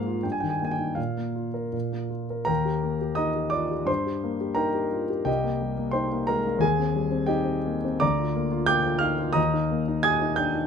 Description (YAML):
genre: classical, romantic character piece for solo piano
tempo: 78-91 BPM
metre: 2/4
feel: rubato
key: Eb major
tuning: A4 = 441 Hz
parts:
  - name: warm concert grand piano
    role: solo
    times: 0.0-10.7 s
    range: C2 to Ab6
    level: -23 LUFS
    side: left 1 dB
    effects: none
room: light reverb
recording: close, detailed microphones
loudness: -23 LUFS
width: side -6 dB against mid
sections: 0.0-2.5 A section; 2.5-10.7 B section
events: none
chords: 0.2 Eb/G; 1.0 Bb5; 2.5 Eb; 3.9 Eb/G; 5.3 Cm7; 6.6 Cm/Eb; 8.0 Bb/D; 9.4 Eb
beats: 0.24 | 0.98 1.74 | 2.49 3.19 | 3.88 4.58 | 5.27 5.95 | 6.62 7.29 | 8.02 8.69 | 9.37 10.06